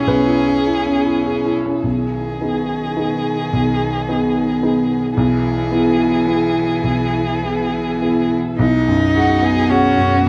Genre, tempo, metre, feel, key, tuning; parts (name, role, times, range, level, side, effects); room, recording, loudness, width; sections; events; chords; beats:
neoclassical piano and strings; 101-111 BPM; 3/4; rubato; B major; A4 = 444 Hz
warm violin; melody; 0.0-10.3 s; F#4 to G#4; -25 LUFS; equal; tape echo
rich cello; second line; 0.0-10.3 s; D#3 to D#4; -23 LUFS; equal
clear concert grand piano; accompaniment; 0.0-10.3 s; B1 to C#5; -20 LUFS; equal
ethereal airy pad; sustained chords; 0.0-10.3 s; B3 to G#4; -28 LUFS; equal
moderate studio reverb, RT60 0.7 s; dark, warm production; -17 LUFS; mono
0.0-1.8 A section; 1.8-8.6 B section; 8.6-10.3 A section
0.0 C#m7/B; 1.8 B6; 5.2 E/B; 8.6 B6
| 0.07 0.66 1.26 | 1.85 2.41 2.97 | 3.53 4.08 4.62 | 5.16 5.71 6.26 | 6.83 7.42 8.00 | 8.59 9.15 9.70 | 10.26